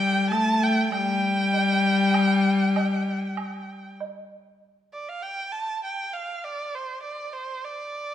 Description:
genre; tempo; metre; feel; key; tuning
chinese traditional, Chinese chamber ensemble; 99 BPM; 4/4; rubato; G shang mode; A4 = 440 Hz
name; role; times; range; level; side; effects
rich erhu; melody; 0.0-8.1 s; C5 to A5; -26 LUFS; right 2 dB; none
rich cello; second line; 0.0-4.0 s; G3 to A3; -23 LUFS; left 3 dB; none
woodblock; percussion; 0.3-4.1 s; none; -36 LUFS; right 6 dB; none
room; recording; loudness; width
wet recital hall reverb, RT60 1.6 s; none; -22 LUFS; side -11 dB against mid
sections
0.0-4.6 A section; 4.6-8.1 B section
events
none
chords
none

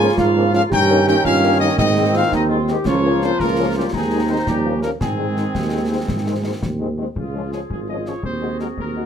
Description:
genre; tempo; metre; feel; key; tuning
military-style march for wind band; 112 BPM (dotted quarters); 6/8; straight; Ab major; A4 = 438 Hz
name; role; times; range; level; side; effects
mellow trumpet section; melody; 0.0-9.1 s; F4 to Ab5; -23 LUFS; left 3 dB; none
mellow euphonium; second line; 0.0-9.1 s; G3 to Ab4; -23 LUFS; right 5 dB; none
mellow woodwind section; second line; 0.0-9.1 s; C4 to Ab4; -25 LUFS; left 2 dB; none
mellow French horn section; accompaniment; 0.0-9.0 s; Eb3 to Gb4; -24 LUFS; left 5 dB; none
warm trombone section; sustained chords; 0.0-6.9 s; Db3 to Db4; -25 LUFS; right 1 dB; none
mellow tuba; bass; 0.0-9.1 s; Ab1 to Ab2; -22 LUFS; right 2 dB; none
concert snare drum, concert bass drum and clash cymbals; drums; 0.2-8.9 s; none; -27 LUFS; left 1 dB; none
room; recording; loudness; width
light reverb; none; -16 LUFS; side -8 dB against mid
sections
0.0-7.2 A section; 7.2-9.1 B section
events
none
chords
0.0 Bbm7/Ab; 0.7 Eb7/G; 1.8 Ab; 2.9 Bbm/Db; 3.9 Ab/Eb; 4.5 Eb9; 5.0 Ab; 7.2 Db; 8.2 Ab7/Eb

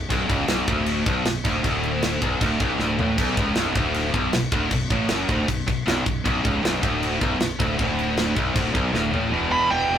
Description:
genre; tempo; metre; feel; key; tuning
heavy metal; 156 BPM; 4/4; straight; B minor; A4 = 444 Hz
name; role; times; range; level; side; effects
overdriven electric guitar; riff; 0.0-10.0 s; B1 to E3; -25 LUFS; equal; none
scooped high-gain guitar; riff; 0.0-10.0 s; B1 to B2; -26 LUFS; left 1 dB; distortion
growling fingered electric bass; bass; 0.0-10.0 s; B0 to A1; -31 LUFS; equal; overdrive
modern studio drum kit; drums; 0.1-9.2 s; crash cymbal, kick drum, snare drum, toms; -25 LUFS; equal; none
high-gain lead guitar; melody; 9.5-10.0 s; G5 to B5; -19 LUFS; right 3 dB; distortion
room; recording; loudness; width
light reverb; rough rehearsal-room recording; -20 LUFS; side -9 dB against mid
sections
0.0-9.3 A section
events
drum fill 2.8-3.2, 8.9-9.3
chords
0.0 Bm; 9.3 Em

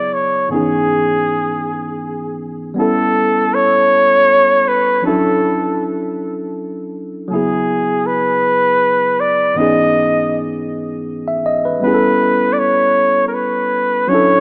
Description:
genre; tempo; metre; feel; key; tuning
R&B; 53 BPM (dotted quarters); 6/8; straight; unclear; A4 = 440 Hz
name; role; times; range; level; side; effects
warm flugelhorn; melody; 0.0-14.4 s; G#4 to D#5; -16 LUFS; equal; none
tine electric piano; accompaniment; 0.0-14.4 s; G#2 to E5; -20 LUFS; equal; none
room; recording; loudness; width
light reverb; rough home demo mix, small speaker sound; -15 LUFS; mono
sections
0.0-14.4 A section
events
none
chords
0.0 F#7sus4; 0.5 C#m9/G#; 2.8 A9; 5.0 Dmaj9; 7.3 F#7sus4; 9.6 C#m9/G#; 11.8 A9

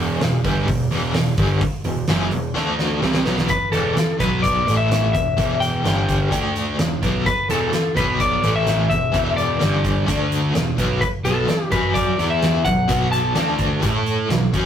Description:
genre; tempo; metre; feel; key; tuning
hard rock; 128 BPM; 4/4; straight; E minor; A4 = 439 Hz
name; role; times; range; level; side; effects
overdriven semi-hollow guitar; riff; 0.0-14.7 s; E2 to A4; -24 LUFS; left 2 dB; tremolo
sludgy distorted guitar; riff; 0.0-14.7 s; E2 to A4; -23 LUFS; right 3 dB; overdrive
picked electric bass; bass; 0.0-14.7 s; E1 to A2; -26 LUFS; equal; none
huge arena drum kit; drums; 0.2-14.6 s; hi-hat, kick drum, snare drum; -24 LUFS; equal; none
lightly driven lead guitar; melody; 3.5-14.0 s; A4 to A5; -21 LUFS; left 4 dB; none
room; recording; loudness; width
wet booth ambience, RT60 0.2 s; rough rehearsal-room recording, tube saturation; -17 LUFS; side -9 dB against mid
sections
0.0-3.5 A section; 3.5-14.7 B section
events
drum fill 2.6-3.5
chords
0.0 Em; 2.6 D5; 3.0 Gadd11; 3.5 E5; 4.2 B5; 4.7 A5; 5.1 E5; 5.8 G5; 6.3 D5; 6.8 E5; 8.0 B5; 8.4 A5; 8.9 E5; 9.6 G5; 10.1 D5; 10.5 E5; 11.2 B5; 11.7 F#5; 12.2 E5; 12.7 B5; 13.4 D5; 13.8 A5

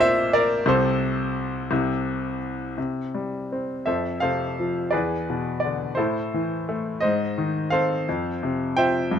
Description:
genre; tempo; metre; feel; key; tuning
classical, lyrical solo piano; 57 BPM (dotted quarters); 6/8; rubato; unclear; A4 = 440 Hz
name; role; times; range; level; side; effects
bright grand piano; solo; 0.0-9.2 s; Bb1 to G5; -22 LUFS; left 1 dB; none
room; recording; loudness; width
moderate studio reverb, RT60 0.6 s; dark, warm production; -22 LUFS; side -8 dB against mid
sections
0.0-2.8 A section; 2.8-9.2 B section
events
none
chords
0.0 Bbsus2; 0.7 Am/C; 2.8 C5; 3.9 F; 4.9 E7; 6.0 Am; 7.0 Ab; 8.1 F

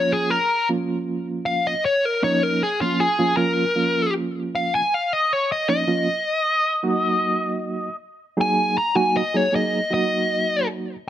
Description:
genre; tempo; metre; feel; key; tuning
blues; 78 BPM; 4/4; straight; Bb minor; A4 = 441 Hz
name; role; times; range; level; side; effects
dark smooth lead guitar; melody; 0.0-10.7 s; F4 to Bb5; -20 LUFS; left 1 dB; overdrive
reed electric piano; accompaniment; 0.0-10.9 s; F3 to Ab4; -23 LUFS; right 3 dB; medium tremolo
room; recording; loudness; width
moderate studio reverb, RT60 0.6 s; none; -19 LUFS; side -11 dB against mid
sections
0.0-11.1 A section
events
lead electric guitar solo 0.0-11.1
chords
0.0 Bbm; 6.1 Ebm

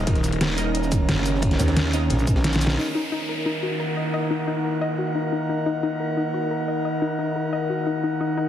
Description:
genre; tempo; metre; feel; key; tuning
dark technical drum and bass; 177 BPM; 4/4; straight; Eb minor; A4 = 442 Hz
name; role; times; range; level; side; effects
metallic inharmonic drone; sustained chords; 0.0-8.5 s; Eb3 to Gb4; -27 LUFS; equal; chorus, built-in reverb, sidechain pumping
filtered dub chord stab; stabs; 0.0-2.0 s; Eb4 to Eb5; -33 LUFS; right 4 dB; phaser, lush chorus, tape echo
growling FM bass; bass; 0.0-2.8 s; Gb1 to Bb1; -24 LUFS; equal; none
airy breathy pad; texture; 0.0-8.5 s; Eb4 to Bb5; -30 LUFS; right 1 dB; chorus, sidechain pumping
phased detuned saw bass; bass; 0.1-2.1 s; Eb1 to Eb2; -24 LUFS; equal; phaser, overdrive, sidechain pumping
crunchy breakbeat drum kit; drums; 0.1-2.8 s; ride cymbal, snare drum; -35 LUFS; equal; high-pass filter on cymbals, high-pass filter on snare, high-pass filter on room
dubstep drum kit; drums; 0.1-2.8 s; cabasa, hi-hat, snare drum; -25 LUFS; equal; none
electronic kick drum; drums; 0.1-2.3 s; none; -23 LUFS; equal; none
warbly dusty pluck; arpeggios; 2.8-8.5 s; Eb4 to Eb5; -28 LUFS; left 4 dB; chorus, sidechain pumping, tape echo
downlifter; sound effects; 2.8-5.5 s; none; -34 LUFS; equal; none
room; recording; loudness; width
moderate digital room reverb, RT60 1.2 s; heavily compressed radio sound, multiband compression; -21 LUFS; side -10 dB against mid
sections
0.0-2.8 A section; 2.8-8.5 B section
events
drop 0.0-2.8; drum fill 2.4-2.8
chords
0.0 Ebm

